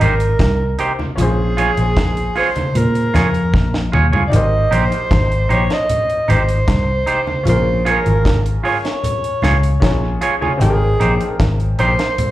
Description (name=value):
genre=lovers rock reggae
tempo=76 BPM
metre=4/4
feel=straight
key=Ab major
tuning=A4 = 440 Hz
part: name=clear alto saxophone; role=melody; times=0.0-12.3 s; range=Ab4 to Eb5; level=-20 LUFS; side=right 1 dB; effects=tape echo, slapback echo
part: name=clear grand piano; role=accompaniment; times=0.0-12.3 s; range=C3 to G5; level=-26 LUFS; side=left 2 dB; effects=tape echo, slapback echo
part: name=twangy electric guitar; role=stabs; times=0.0-11.9 s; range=Eb4 to Db5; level=-18 LUFS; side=right 4 dB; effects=slapback echo
part: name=vintage muted fingered electric bass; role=bass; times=0.0-12.0 s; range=Ab1 to Bb2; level=-16 LUFS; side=equal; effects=none
part: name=deep reggae drum kit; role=drums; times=0.0-12.3 s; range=hi-hat, kick drum, snare drum, toms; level=-20 LUFS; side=equal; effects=tape echo
part: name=congas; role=percussion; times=0.0-12.3 s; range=none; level=-23 LUFS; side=right 1 dB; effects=none
room=light reverb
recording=live gig heard through the venue's PA, club reverb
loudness=-14 LUFS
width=side -15 dB against mid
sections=0.0-12.3 A section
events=drum fill 3.5-4.3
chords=0.0 Abmaj7; 1.2 Bbm7; 4.3 Abmaj7; 7.5 Bbm7; 10.6 Abmaj7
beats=0.39 | 1.18 1.97 2.75 3.54 | 4.32 5.11 5.89 6.68 | 7.46 8.25 9.04 9.82 | 10.61 11.39 12.18